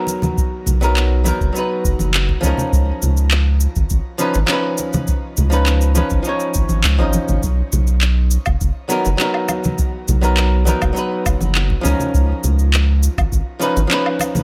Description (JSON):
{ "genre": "sunset chillout", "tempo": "102 BPM", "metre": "4/4", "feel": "straight", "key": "B lydian", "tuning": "A4 = 442 Hz", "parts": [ { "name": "archtop guitar, miked and amplified", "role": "accompaniment", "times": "0.0-14.4 s", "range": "E#3 to D#5", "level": "-23 LUFS", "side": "equal", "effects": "delay, shimmer reverb" }, { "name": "electronic cabasa, handclaps and woodblock", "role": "drums", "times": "0.1-14.4 s", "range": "none", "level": "-24 LUFS", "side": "equal", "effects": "overdrive" }, { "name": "congas", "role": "percussion", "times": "0.1-14.4 s", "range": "none", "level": "-26 LUFS", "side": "equal", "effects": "none" }, { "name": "electronic kick drum", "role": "drums", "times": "0.4-13.4 s", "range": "none", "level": "-22 LUFS", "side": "equal", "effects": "none" }, { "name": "round analog bass", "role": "bass", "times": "0.7-13.9 s", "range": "F#1 to C#2", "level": "-18 LUFS", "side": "equal", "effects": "none" } ], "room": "light reverb", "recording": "none", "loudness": "-17 LUFS", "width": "mono", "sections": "0.0-14.4 A section", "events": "none", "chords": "0.0 Bmaj7; 2.4 C#9; 7.4 Bmaj7; 11.8 C#9", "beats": "| 0.38 0.96 1.55 2.14 | 2.73 3.32 3.91 4.49 | 5.08 5.67 6.26 6.85 | 7.43 8.02 8.61 9.20 | 9.79 10.38 10.96 11.55 | 12.14 12.73 13.32 13.91" }